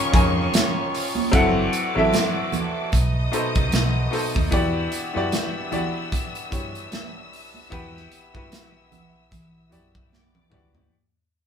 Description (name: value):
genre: lush 1970s-style soul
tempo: 75 BPM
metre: 4/4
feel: swing 58% on 16ths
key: E dorian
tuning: A4 = 440 Hz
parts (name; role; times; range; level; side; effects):
- warm studio string section; second line; 0.0-10.9 s; C#5 to E6; -31 LUFS; left 2 dB; none
- clear grand piano; accompaniment; 0.0-10.9 s; B2 to G#5; -24 LUFS; left 1 dB; none
- muted French horn section; sustained chords; 0.0-10.9 s; B2 to F#4; -33 LUFS; right 2 dB; none
- vintage muted fingered electric bass; bass; 0.1-10.9 s; F#1 to E3; -25 LUFS; right 1 dB; none
- modern studio drum kit; drums; 0.1-10.9 s; hi-hat, kick drum, snare drum, toms; -24 LUFS; equal; none
- congas; percussion; 0.5-10.9 s; none; -31 LUFS; right 5 dB; none
room: moderate studio ambience, RT60 0.5 s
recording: band playing live in one room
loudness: -20 LUFS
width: side -8 dB against mid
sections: 0.0-10.9 A section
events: fade-out 0.0-10.9; drum fill 10.1-10.9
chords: 0.0 C#69; 1.3 F#m7b5; 2.9 B7b9; 4.5 Em9